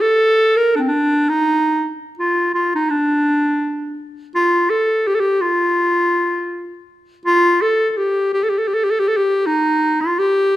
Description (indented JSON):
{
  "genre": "turkish",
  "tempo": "83 BPM",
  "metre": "4/4",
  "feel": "straight",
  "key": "unclear",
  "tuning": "A4 = 440 Hz",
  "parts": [
    { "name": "clear clarinet", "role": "solo", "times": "0.0-10.6 s", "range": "C4 to Bb4", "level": "-15 LUFS", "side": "equal", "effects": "none" }
  ],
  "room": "moderate recital hall reverb, RT60 1.7 s",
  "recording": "minimal, uncompressed stereo recording",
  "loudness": "-15 LUFS",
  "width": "side -14 dB against mid",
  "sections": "0.0-10.6 A section",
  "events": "none",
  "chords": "none",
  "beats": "0.00 0.73 | 1.45 2.18 2.90 3.63 | 4.35 5.08 5.81 6.54 | 7.26 7.99 8.72 9.45 | 10.17"
}